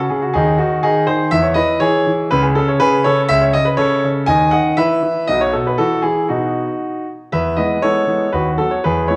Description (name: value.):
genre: classical-period piano sonatina.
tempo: 121 BPM.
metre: 2/4.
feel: straight.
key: C# minor, E major from 3.3 s.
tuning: A4 = 440 Hz.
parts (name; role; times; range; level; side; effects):
bright concert grand piano; solo; 0.0-9.2 s; B1 to G#5; -16 LUFS; equal; none.
room: wet recital hall reverb, RT60 1.5 s.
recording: dark, warm production.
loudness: -16 LUFS.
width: mono.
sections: 0.0-7.3 A section; 7.3-9.2 B section.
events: none.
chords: 0.3 G#5/D#; 1.3 C#m/E; 2.3 C#5; 3.3 A/C#; 4.3 N.C.; 4.8 E5; 5.3 N.C.; 5.8 E; 6.3 B; 7.3 E; 8.3 B/D#.